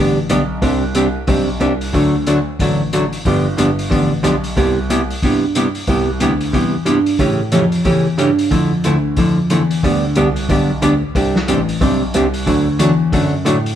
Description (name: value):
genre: country, western swing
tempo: 182 BPM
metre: 4/4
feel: swing 61% on 8ths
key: C major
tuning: A4 = 439 Hz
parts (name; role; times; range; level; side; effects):
- archtop guitar, miked and amplified; accompaniment; 0.0-13.6 s; C3 to G4; -16 LUFS; equal; none
- dark grand piano; bass; 0.0-13.8 s; G1 to A2; -18 LUFS; equal; none
- vintage drum kit; drums; 0.3-13.7 s; hi-hat, kick drum, snare drum; -22 LUFS; left 1 dB; none
room: moderate stone room reverb, RT60 1.1 s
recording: band playing live in one room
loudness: -13 LUFS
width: side -10 dB against mid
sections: 0.0-5.9 A section; 5.9-13.8 B section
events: none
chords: 0.0 G; 0.6 Csus2; 1.9 D; 3.3 G7; 4.6 Cmaj7; 7.2 A7; 8.5 Dmadd9; 9.8 G; 11.1 Csus2; 12.5 D